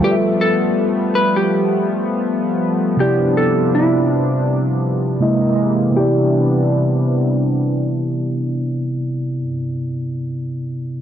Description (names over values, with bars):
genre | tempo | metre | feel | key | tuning
R&B | 81 BPM | 4/4 | swing 58% on 16ths | C major | A4 = 440 Hz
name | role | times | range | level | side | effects
vintage hollow-body jazz guitar | melody | 0.0-9.5 s | E4 to B4 | -20 LUFS | equal | low-pass filter, analog delay
mellow tine electric piano | accompaniment | 0.0-11.0 s | C3 to E5 | -19 LUFS | equal | fast stereo tremolo, low-pass filter
chorused pulse-width pad | sustained chords | 0.0-9.4 s | C3 to D#5 | -19 LUFS | left 1 dB | low-pass filter
room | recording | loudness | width
moderate scoring stage reverb, RT60 1.6 s | dry, gritty hardware recording, transformer saturation | -15 LUFS | side -10 dB against mid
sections
0.0-5.9 A section; 5.9-8.9 B section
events
filter sweep 0.0-5.9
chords
0.0 G13; 3.0 Cmaj9; 5.2 C7alt; 5.9 Cmaj9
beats
| 0.02 0.76 1.50 2.24 | 2.98 3.73 4.47 5.21 | 5.95 6.69 7.43 8.17